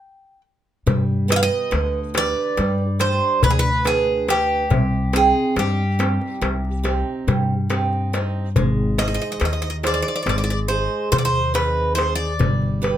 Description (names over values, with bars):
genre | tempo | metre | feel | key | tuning
greek folk, Greek bouzouki band | 140 BPM (eighths) | 9/8 | straight | unclear | A4 = 440 Hz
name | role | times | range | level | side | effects
Greek bouzouki | melody | 0.0-13.0 s | G4 to G5 | -23 LUFS | equal | none
picked old ladder-braced acoustic guitar | accompaniment | 0.9-13.0 s | C3 to G5 | -24 LUFS | right 5 dB | none
upright bass | bass | 0.9-13.0 s | G1 to G2 | -23 LUFS | left 1 dB | none
darbuka | percussion | 0.9-13.0 s | none | -23 LUFS | left 2 dB | none
room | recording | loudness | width
moderate small room reverb, RT60 0.5 s | none | -18 LUFS | side -11 dB against mid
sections
0.9-13.0 A section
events
stop 0.0-0.9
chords
0.0 N.C.; 0.9 G; 4.7 Cm; 8.6 Ab; 12.4 G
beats
0.02 0.44 | 0.87 1.30 1.72 2.15 2.58 3.01 3.43 3.86 4.29 | 4.71 5.14 5.57 6.00 6.42 6.85 7.28 7.71 8.13 | 8.56 8.98 9.41 9.84 10.27 10.69 11.12 11.54 11.97 | 12.39 12.82